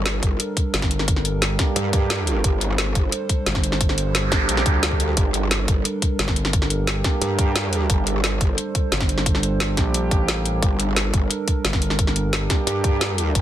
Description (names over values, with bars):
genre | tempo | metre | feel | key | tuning
dark technical drum and bass | 176 BPM | 4/4 | straight | G minor | A4 = 444 Hz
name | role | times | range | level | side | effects
dark analog pad | sustained chords | 0.0-13.4 s | G3 to C5 | -28 LUFS | right 2 dB | chorus, sidechain pumping
growl bass | bass | 0.0-8.6, 10.6-13.4 s | G1 to G2 | -23 LUFS | equal | chorus, tube saturation, sidechain pumping
drum and bass drum kit | drums | 0.1-13.4 s | hi-hat, snare drum | -23 LUFS | left 1 dB | none
electronic kick drum | drums | 0.2-13.4 s | none | -21 LUFS | equal | none
growling FM bass | bass | 0.7-12.5 s | G1 to Bb1 | -24 LUFS | equal | none
dark brass ensemble | stabs | 1.2-13.4 s | Bb3 to G4 | -29 LUFS | right 4 dB | tape echo
noise sweep | sound effects | 4.0-5.2 s | none | -27 LUFS | right 4 dB | none
room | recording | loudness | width
little or no reverb | dense, heavily limited modern master | -18 LUFS | side -12 dB against mid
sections
0.0-13.4 A section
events
noise sweep 4.0-5.2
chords
0.0 Gm